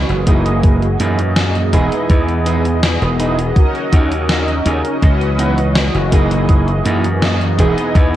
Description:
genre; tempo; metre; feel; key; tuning
vaporwave; 82 BPM; 4/4; straight; unclear; A4 = 442 Hz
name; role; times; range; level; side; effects
mellow synth brass; accompaniment; 0.0-8.2 s; E3 to D#5; -18 LUFS; right 1 dB; lush chorus, analog delay
glassy slap bass; bass; 0.0-8.2 s; E1 to F#2; -17 LUFS; equal; none
gated 80s digital drum machine; drums; 0.1-8.1 s; hi-hat, snare drum; -20 LUFS; equal; gated reverb, gated reverb snare
electric guitar at the edge of break-up; riff; 0.3-8.2 s; A#3 to G#4; -22 LUFS; right 3 dB; lush chorus, analog delay
electronic kick drum; drums; 0.3-8.1 s; none; -12 LUFS; equal; none
room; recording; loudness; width
light reverb; cassette tape; -12 LUFS; side -13 dB against mid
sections
0.0-8.2 A section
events
none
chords
0.3 F#13; 1.7 Emaj7; 3.6 D#m7; 5.0 C#m11; 6.1 F#13; 7.6 Emaj7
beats
0.64 1.37 | 2.10 2.83 3.56 4.29 | 5.03 5.76 6.49 7.22 | 7.95

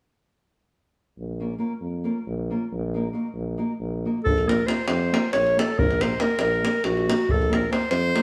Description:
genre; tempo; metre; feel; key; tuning
balkan folk, Balkan wedding band; 276 BPM (eighths); 7/8; straight; Bb harmonic minor; A4 = 439 Hz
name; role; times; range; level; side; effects
warm tuba; bass; 1.2-8.2 s; Bb1 to F2; -31 LUFS; equal; none
nylon-string guitar; accompaniment; 1.4-8.2 s; Bb3 to Bb4; -30 LUFS; equal; none
warm clarinet; melody; 4.2-8.2 s; Gb4 to Db5; -26 LUFS; equal; none
davul; percussion; 4.3-8.2 s; none; -29 LUFS; equal; none
room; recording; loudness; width
moderate stone room reverb, RT60 1.4 s; band playing live in one room; -24 LUFS; mono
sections
1.2-4.3 A section; 4.3-8.2 B section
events
none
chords
1.2 Bbm; 2.7 Ebm/Bb; 4.3 Bbm; 5.8 Ebm/Bb; 7.3 Bbm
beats
| 1.19 1.41 1.63 1.85 2.07 2.29 2.50 | 2.72 2.94 3.16 3.38 3.60 3.82 4.04 | 4.25 4.47 4.69 4.91 5.12 5.34 5.56 | 5.78 5.99 6.21 6.43 6.64 6.86 7.08 | 7.29 7.51 7.73 7.94 8.16

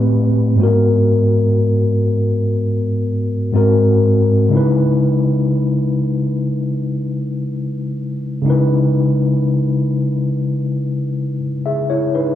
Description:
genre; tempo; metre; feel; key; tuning
R&B; 61 BPM; 4/4; straight; C# dorian; A4 = 439 Hz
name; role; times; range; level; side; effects
mellow tine electric piano; solo; 0.0-12.3 s; G#2 to E5; -14 LUFS; left 1 dB; medium stereo tremolo
room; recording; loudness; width
light reverb; dry, gritty hardware recording, studio reverb; -14 LUFS; side -12 dB against mid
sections
0.0-12.3 A section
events
none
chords
0.0 Am7; 0.6 G#m7; 3.5 G#7; 4.5 C#m7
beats
| 0.59 1.57 2.56 3.54 | 4.52 5.51 6.49 7.47 | 8.46 9.44 10.42 11.41

